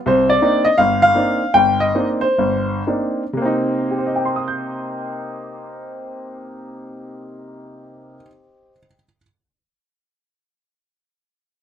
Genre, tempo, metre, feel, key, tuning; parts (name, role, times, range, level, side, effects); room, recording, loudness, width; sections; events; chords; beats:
solo jazz; 112-172 BPM; 4/4; swing 63% on 8ths, rubato; C minor; A4 = 440 Hz
warm upright piano; solo; 0.1-9.2 s; G1 to G6; -17 LUFS; equal
light reverb; -15 LUFS; side -9 dB against mid
0.0-3.4 A section; 3.4-7.5 B section
slowing down 0.1-3.4
0.1 Cm9; 3.4 Cm7
| 0.07 0.42 0.78 1.16 | 1.54 1.95 2.39 2.88 | 3.39 3.91 4.42 4.93 | 5.42 5.93 6.43 6.95